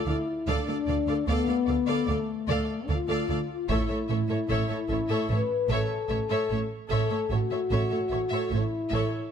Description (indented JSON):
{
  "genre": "cinematic, epic orchestral film score",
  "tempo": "75 BPM",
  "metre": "4/4",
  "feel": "straight",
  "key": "unclear",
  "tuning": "A4 = 440 Hz",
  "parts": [
    { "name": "clear studio violin section", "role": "melody", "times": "0.0-9.1 s", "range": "E5 to F5", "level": "-39 LUFS", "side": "left 2 dB", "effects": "none" },
    { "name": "warm symphonic violin section", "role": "second line", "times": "0.0-9.1 s", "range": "C#5 to D5", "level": "-36 LUFS", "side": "left 2 dB", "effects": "none" },
    { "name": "rich symphonic viola section", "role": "accompaniment", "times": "0.0-9.1 s", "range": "A4", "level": "-34 LUFS", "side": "right 1 dB", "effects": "none" },
    { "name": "mellow French horn section", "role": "sustained chords", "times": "0.0-9.3 s", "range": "A3 to B4", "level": "-29 LUFS", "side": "left 5 dB", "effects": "none" },
    { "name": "rich studio double bass section", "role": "bass", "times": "0.1-9.0 s", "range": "A1 to D2", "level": "-31 LUFS", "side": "right 4 dB", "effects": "none" },
    { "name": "rich symphonic cello section", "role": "bass", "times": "0.1-9.0 s", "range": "D2 to A2", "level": "-34 LUFS", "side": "right 4 dB", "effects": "none" },
    { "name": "taiko ensemble", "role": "drums", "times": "3.7-5.3 s", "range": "none", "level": "-31 LUFS", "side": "equal", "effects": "none" }
  ],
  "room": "moderate scoring stage reverb, RT60 1.6 s",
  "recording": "close, detailed microphones",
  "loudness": "-25 LUFS",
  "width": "side -8 dB against mid",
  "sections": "0.0-9.3 A section",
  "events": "none",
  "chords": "0.0 Dm; 3.7 A"
}